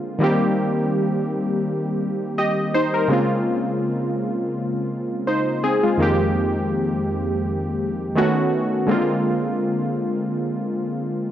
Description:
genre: R&B.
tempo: 83 BPM.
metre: 4/4.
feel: swing 54% on 16ths.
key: unclear.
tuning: A4 = 440 Hz.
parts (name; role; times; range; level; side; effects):
warm analog keys; solo; 0.0-11.3 s; F2 to Eb5; -19 LUFS; equal; chorus.
room: light reverb.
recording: dry, gritty hardware recording.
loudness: -19 LUFS.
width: side -11 dB against mid.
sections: 0.0-11.3 A section.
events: none.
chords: 0.2 Cm7; 3.1 Bbm9; 6.0 Fm11; 8.2 B9; 8.9 Bb9.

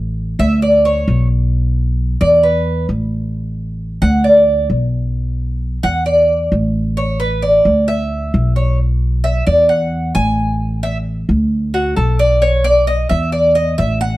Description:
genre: latin, Cuban son and guajira.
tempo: 132 BPM.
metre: 4/4.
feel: straight.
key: unclear.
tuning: A4 = 438 Hz.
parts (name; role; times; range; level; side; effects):
upright bass; bass; 0.0-14.2 s; A1 to E2; -16 LUFS; equal; none.
Cuban tres; arpeggios; 0.4-14.2 s; F#4 to G#5; -14 LUFS; equal; none.
room: light reverb.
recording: dark, warm production.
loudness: -13 LUFS.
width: side -17 dB against mid.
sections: 0.0-14.2 A section.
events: Cuban tres solo 0.0-14.2.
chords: 0.0 Asus4; 0.6 Bmadd9; 1.5 Bmadd11; 2.4 E5; 3.3 D/A; 4.2 Bm; 5.2 Bsus4; 6.1 Asus4; 7.0 Aadd11; 7.9 Dsus2; 8.8 Bmadd11; 9.7 E; 10.6 Asus4; 11.5 Bm7; 12.4 Bmadd11; 13.3 Dadd9.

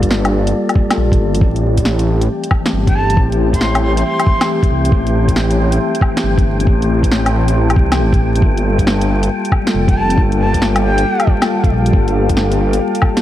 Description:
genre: future garage.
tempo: 137 BPM.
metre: 4/4.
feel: swing 65% on 16ths.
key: A phrygian.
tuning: A4 = 445 Hz.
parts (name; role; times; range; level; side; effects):
mellow tine electric piano; accompaniment; 0.0-13.2 s; E3 to A4; -19 LUFS; left 2 dB; medium stereo tremolo, vintage 12-bit sampler grit, sidechain pumping, tape echo.
deep dark ambient pad; sustained chords; 0.0-13.2 s; G4 to C6; -23 LUFS; left 1 dB; chorus, built-in reverb, sidechain pumping.
swelling detuned saw bass; bass; 0.0-12.8 s; F1 to C2; -16 LUFS; equal; sidechain pumping.
electronic kick drum; drums; 0.0-13.1 s; none; -14 LUFS; equal; none.
garage drum kit; drums; 0.0-13.2 s; hi-hat, snare drum, woodblock; -19 LUFS; equal; none.
wind-like tuned noise texture; texture; 0.0-13.2 s; D5 to G5; -27 LUFS; equal; built-in reverb.
breathy flute-like synth lead; melody; 2.9-4.5, 9.9-11.3 s; G5 to C6; -21 LUFS; right 1 dB; lush chorus, tape echo.
room: light reverb, digital ambience.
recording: vinyl crackle.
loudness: -12 LUFS.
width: side -13 dB against mid.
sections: 0.0-13.2 A section.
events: none.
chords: 0.0 Gm9; 1.4 Am7; 8.4 Gm9.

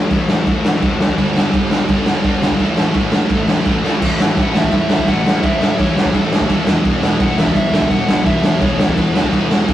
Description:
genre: punk rock.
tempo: 169 BPM.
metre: 4/4.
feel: straight.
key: unclear.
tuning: A4 = 440 Hz.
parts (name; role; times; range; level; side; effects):
scooped high-gain guitar; riff; 0.0-9.7 s; E2 to A3; -26 LUFS; equal; distortion.
sludgy distorted guitar; riff; 0.0-9.7 s; E2 to C4; -21 LUFS; left 4 dB; overdrive.
fuzz picked electric bass; bass; 0.0-9.7 s; E1 to G2; -24 LUFS; equal; none.
raw garage drum kit; drums; 0.1-9.7 s; crash cymbal, kick drum, snare drum; -15 LUFS; equal; none.
sludgy distorted guitar; riff; 1.2-9.7 s; G2 to E4; -22 LUFS; right 5 dB; overdrive.
smooth overdriven lead guitar; melody; 4.4-9.5 s; A4 to F#5; -22 LUFS; equal; none.
room: light reverb.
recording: rough rehearsal-room recording, warm saturation.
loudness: -13 LUFS.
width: side -12 dB against mid.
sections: 0.0-4.0 A section; 4.0-9.7 B section.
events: drum fill 3.8.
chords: 0.0 A5; 1.2 G; 2.6 A; 6.7 E.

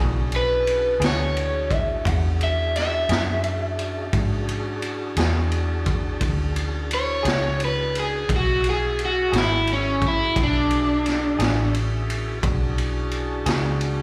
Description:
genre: slow blues.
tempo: 58 BPM (dotted quarters).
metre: 12/8.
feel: straight.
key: E mixolydian.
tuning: A4 = 440 Hz.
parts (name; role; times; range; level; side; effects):
electric guitar through a small old amp; accompaniment; 0.0-13.7 s; E3 to G#4; -34 LUFS; equal; tremolo, slapback echo.
tonewheel organ; sustained chords; 0.0-14.0 s; D4 to E5; -35 LUFS; equal; slow rotary speaker, chorus vibrato.
vintage muted fingered electric bass; bass; 0.0-14.0 s; G#1 to G#2; -27 LUFS; equal; none.
raw garage drum kit; drums; 0.3-14.0 s; kick drum, ride cymbal, snare drum; -29 LUFS; equal; none.
overdriven semi-hollow guitar; melody; 0.4-11.7 s; C#4 to F#5; -25 LUFS; equal; slapback echo.
room: light reverb, small room ambience.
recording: live gig heard through the venue's PA, club reverb.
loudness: -23 LUFS.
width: mono.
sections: 0.0-14.0 A section.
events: overdriven electric guitar solo 0.0-14.0.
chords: 0.0 E7.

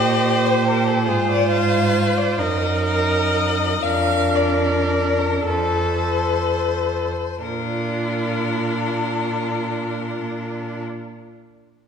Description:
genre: classical, slow romantic movement for string quartet.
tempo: 29-48 BPM (dotted quarters).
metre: 6/8.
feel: rubato.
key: Bb major.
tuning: A4 = 435 Hz.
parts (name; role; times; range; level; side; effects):
rich violin; melody; 0.0-10.8 s; Ab4 to F5; -24 LUFS; left 7 dB; none.
rich violin; second line; 0.0-10.8 s; D4 to A4; -24 LUFS; left 2 dB; none.
clear viola; accompaniment; 0.0-10.8 s; D4 to C5; -25 LUFS; right 2 dB; none.
rich cello; bass; 0.0-10.8 s; F2 to Bb2; -24 LUFS; right 4 dB; none.
room: wet scoring stage reverb, RT60 1.6 s.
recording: recorded in a church or concert hall.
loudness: -18 LUFS.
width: side -7 dB against mid.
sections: 0.0-7.4 A section; 7.4-11.2 B section.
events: slowing down 0.0-7.4.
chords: 0.0 Eb6/Bb; 1.1 Ab6; 2.4 Ebm/Gb; 3.8 Bb/F; 5.5 F; 7.4 Bb.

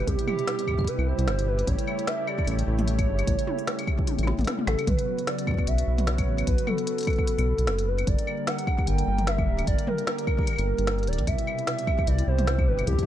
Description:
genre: IDM.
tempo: 150 BPM.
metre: 4/4.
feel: swing 56% on 16ths.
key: B minor.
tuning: A4 = 442 Hz.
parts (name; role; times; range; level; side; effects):
warbly nostalgic lead; melody; 0.0-13.1 s; G4 to G5; -30 LUFS; right 2 dB; wide subtle chorus, ping-pong delay.
warm analog pad; sustained chords; 0.0-13.1 s; B2 to B4; -32 LUFS; equal; chorus.
round analog bass; bass; 0.0-13.0 s; D1 to C2; -25 LUFS; equal; none.
electronic kick drum; drums; 0.1-13.1 s; none; -27 LUFS; equal; studio reverb.
organic electronic drum kit; drums; 0.1-13.1 s; claves, hi-hat, snare drum, toms; -31 LUFS; left 1 dB; studio reverb.
room: light reverb.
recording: dark, warm production.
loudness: -23 LUFS.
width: side -11 dB against mid.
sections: 0.0-13.1 A section.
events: drum fill 4.1-4.9.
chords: 0.0 Cmaj7; 1.7 A7; 4.9 Bsus2; 8.1 Gm; 11.3 Cmaj7.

